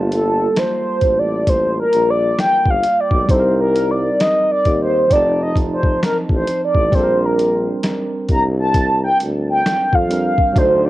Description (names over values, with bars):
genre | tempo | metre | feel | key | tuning
R&B, neo-soul | 66 BPM | 4/4 | swing 61% on 16ths | unclear | A4 = 440 Hz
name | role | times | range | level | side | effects
barky tine electric piano | accompaniment | 0.0-10.9 s | F3 to A5 | -24 LUFS | right 2 dB | slow stereo tremolo, cassette tape
clear tuba | bass | 0.0-10.9 s | F1 to F2 | -21 LUFS | equal | none
mellow horn-like synth lead | melody | 0.1-10.9 s | A4 to Bb5 | -16 LUFS | equal | chorus, phaser, cassette tape
boom bap sampler-style drum kit | drums | 0.1-10.8 s | hi-hat, kick drum, snare drum | -19 LUFS | equal | none
room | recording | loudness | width
small room ambience | home recording on cassette | -14 LUFS | side -16 dB against mid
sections
0.0-10.9 A section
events
soft synth lead solo 0.0-10.9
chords
0.0 Gm9; 3.3 Cm7; 5.1 F7; 6.9 Bb69